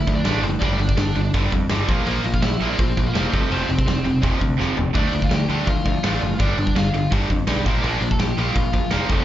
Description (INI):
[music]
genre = punk rock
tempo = 166 BPM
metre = 4/4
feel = straight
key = unclear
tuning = A4 = 440 Hz
[part]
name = bluesy overdriven lead guitar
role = melody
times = 0.0-9.2 s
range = A3 to A5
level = -28 LUFS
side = equal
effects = distortion, slapback echo
[part]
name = overdriven electric guitar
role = riff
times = 0.0-9.2 s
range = F2 to D4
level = -26 LUFS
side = right 9 dB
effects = slapback echo
[part]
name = tight distorted guitar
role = riff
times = 0.0-9.2 s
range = F2 to Bb3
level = -25 LUFS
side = left 5 dB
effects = distortion, slapback echo
[part]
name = growling picked electric bass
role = bass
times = 0.1-9.2 s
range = F1 to F2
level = -24 LUFS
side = equal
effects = overdrive
[part]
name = big rock drum kit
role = drums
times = 0.1-9.2 s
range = hi-hat, kick drum, snare drum, toms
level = -23 LUFS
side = equal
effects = none
[sound]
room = small room ambience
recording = live gig heard through the venue's PA, club reverb, nothing above 7.5 kHz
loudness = -18 LUFS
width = side -12 dB against mid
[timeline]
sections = 0.0-9.2 A section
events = drum fill 4.6-5.0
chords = 0.0 Dm; 0.6 G5; 1.9 Bb5; 3.3 F; 5.0 Dm; 6.4 G; 7.7 Bb